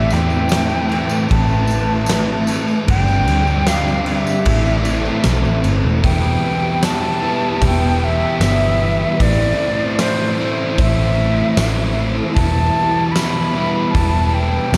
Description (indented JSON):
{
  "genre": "rock, shoegaze and dream pop",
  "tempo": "76 BPM",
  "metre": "4/4",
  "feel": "straight",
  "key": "A minor",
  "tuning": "A4 = 441 Hz",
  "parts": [
    { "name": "jazz flute", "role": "melody", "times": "0.0-14.8 s", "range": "C5 to B5", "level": "-24 LUFS", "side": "equal", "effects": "diffuse ambient delay" },
    { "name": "evolving wavetable pad", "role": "sustained chords", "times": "0.0-14.8 s", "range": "G3 to A5", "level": "-28 LUFS", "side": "equal", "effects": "chorus, built-in reverb, phaser" },
    { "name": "overdriven electric guitar", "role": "riff", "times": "0.0-14.8 s", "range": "G2 to E4", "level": "-25 LUFS", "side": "equal", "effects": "reverse reverb" },
    { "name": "thick fuzz guitar", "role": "riff", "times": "0.0-14.8 s", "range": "E2 to A3", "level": "-24 LUFS", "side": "equal", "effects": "distortion, analog chorus" },
    { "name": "vintage muted picked electric bass", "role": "bass", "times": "0.0-14.8 s", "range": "E1 to E2", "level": "-21 LUFS", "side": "equal", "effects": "none" },
    { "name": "huge arena drum kit", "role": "drums", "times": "0.1-14.8 s", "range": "crash cymbal, hi-hat, kick drum, snare drum", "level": "-24 LUFS", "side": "equal", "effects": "none" },
    { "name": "tambourine", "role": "percussion", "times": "0.1-14.8 s", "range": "none", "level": "-37 LUFS", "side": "equal", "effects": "none" }
  ],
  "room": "wet plate reverb, RT60 3.3 s",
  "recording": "dreamy mix soaked in reverb",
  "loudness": "-17 LUFS",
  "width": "mono",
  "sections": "0.0-6.0 A section; 6.0-14.8 B section",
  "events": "none",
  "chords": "0.0 Amadd9; 2.9 Gsus4; 4.5 Am; 6.0 Em; 9.2 Am; 12.4 Em"
}